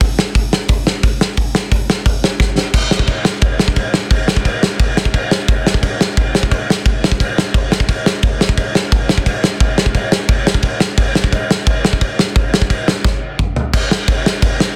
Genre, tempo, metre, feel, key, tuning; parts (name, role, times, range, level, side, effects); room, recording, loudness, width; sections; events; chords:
punk; 175 BPM; 4/4; straight
loose indie drum kit; drums; 0.0-14.7 s; crash cymbal, hi-hat, kick drum, snare drum, toms; -15 LUFS; equal
little or no reverb; dense, heavily limited modern master; -15 LUFS; mono
0.0-2.7 A section; 2.7-13.7 B section; 13.7-14.8 C section
drum fill 2.4-2.7, 13.0-13.7